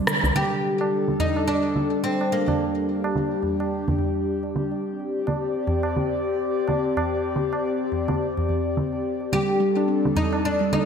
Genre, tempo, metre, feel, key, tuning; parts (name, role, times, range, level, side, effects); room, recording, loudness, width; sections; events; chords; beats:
organic downtempo; 107 BPM; 4/4; swing 58% on 16ths; G minor; A4 = 439 Hz
airy breathy pad; sustained chords; 0.0-10.9 s; C3 to D5; -26 LUFS; left 2 dB; chorus
steel tongue drum; arpeggios; 0.1-0.3, 9.3-10.7 s; D3 to D4; -28 LUFS; right 3 dB; ping-pong delay
electronic rim click, shaker and congas; drums; 0.1-10.9 s; -27 LUFS; right 2 dB; low-pass filter on perc, studio reverb, low-pass filter on snare, gated reverb
tabla; percussion; 0.2-10.6 s; -30 LUFS; right 1 dB
oud; melody; 0.4-4.0, 9.3-10.9 s; Bb3 to G4; -24 LUFS; left 2 dB; ping-pong delay
wet lush hall reverb, RT60 2.0 s, studio reverb; bright 1980s-style digital production; -21 LUFS; side -7 dB against mid
0.4-10.9 A section
band accent 0.1
0.4 Gm; 4.8 C5; 9.3 G5
| 0.35 0.91 1.47 2.04 | 2.60 3.16 3.72 4.28 | 4.84 5.40 5.96 6.52 | 7.08 7.64 8.20 8.76 | 9.32 9.88 10.45